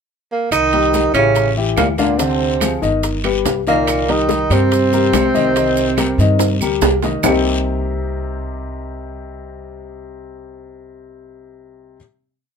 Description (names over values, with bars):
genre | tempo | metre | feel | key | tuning
Afro-Cuban jazz | 143 BPM | 4/4 | straight | C minor | A4 = 440 Hz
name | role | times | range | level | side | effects
mellow tenor saxophone | melody | 0.3-6.8 s | Bb3 to Eb4 | -17 LUFS | right 3 dB | none
warm trombone | second line | 0.5-6.8 s | Bb2 to Eb3 | -23 LUFS | right 6 dB | none
upright bass | bass | 0.5-12.0 s | G1 to G2 | -21 LUFS | equal | none
bongos | percussion | 0.5-7.3 s | none | -24 LUFS | left 10 dB | none
claves | percussion | 0.5-7.3 s | none | -30 LUFS | right 2 dB | none
congas | percussion | 0.5-7.3 s | none | -26 LUFS | left 7 dB | none
guiro | percussion | 0.5-7.3 s | none | -30 LUFS | left 5 dB | none
maracas | percussion | 0.5-7.3 s | none | -29 LUFS | right 6 dB | none
timbales | percussion | 0.5-7.3 s | none | -22 LUFS | right 10 dB | none
warm upright piano | accompaniment | 0.7-12.0 s | C3 to Eb5 | -21 LUFS | left 7 dB | none
room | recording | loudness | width
little or no reverb | minimal, uncompressed stereo recording | -14 LUFS | side -6 dB against mid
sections
0.0-0.5 pickup bar; 0.5-7.2 A section; 7.2-10.6 final chord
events
drum fill 6.4-7.2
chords
0.0 N.C.; 0.5 Cm7; 1.4 A5; 2.2 Dm7b5; 3.0 Gaug; 3.9 Cm7